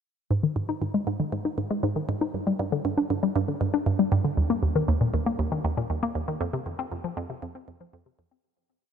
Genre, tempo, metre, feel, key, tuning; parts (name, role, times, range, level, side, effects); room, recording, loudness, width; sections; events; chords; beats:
ambient; 118 BPM; 4/4; straight; Ab lydian; A4 = 442 Hz
hollow square pluck; solo; 0.3-8.4 s; Eb2 to Eb4; -24 LUFS; equal; chorus, phaser, tape echo
moderate huge ambient reverb, RT60 7.8 s; -24 LUFS; side -7 dB against mid
0.3-8.4 A section
fade-out 5.7-8.4
| 0.31 0.81 1.32 1.83 | 2.34 2.85 3.36 3.87 | 4.37 4.88 5.39 5.90 | 6.41 6.92 7.42 7.93